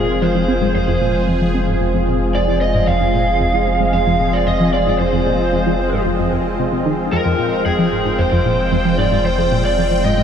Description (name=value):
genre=ambient, sequencer-driven space music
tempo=113 BPM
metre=4/4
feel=straight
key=F minor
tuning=A4 = 437 Hz
part: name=lead guitar through a small cranked amp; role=melody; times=0.0-10.2 s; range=Ab4 to F5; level=-19 LUFS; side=equal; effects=overdrive, ping-pong delay
part: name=sweeping resonant pad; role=sustained chords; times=0.0-10.2 s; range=F3 to G5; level=-20 LUFS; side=right 1 dB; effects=chorus
part: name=tight sequenced synth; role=riff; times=0.0-10.2 s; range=F2 to C4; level=-20 LUFS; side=equal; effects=chorus, phaser, ping-pong delay
part: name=warm sub bass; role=bass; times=0.0-10.2 s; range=F1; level=-22 LUFS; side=equal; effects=none
part: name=bubbling stepped-filter texture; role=texture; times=0.0-10.2 s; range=C4 to Eb5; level=-28 LUFS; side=equal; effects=chorus, built-in reverb
room=moderate huge ambient reverb, RT60 8.8 s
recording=none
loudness=-14 LUFS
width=side -8 dB against mid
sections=0.0-10.2 A section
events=filter sweep on synth arpeggio sound 0.0-10.2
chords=0.0 Fmadd9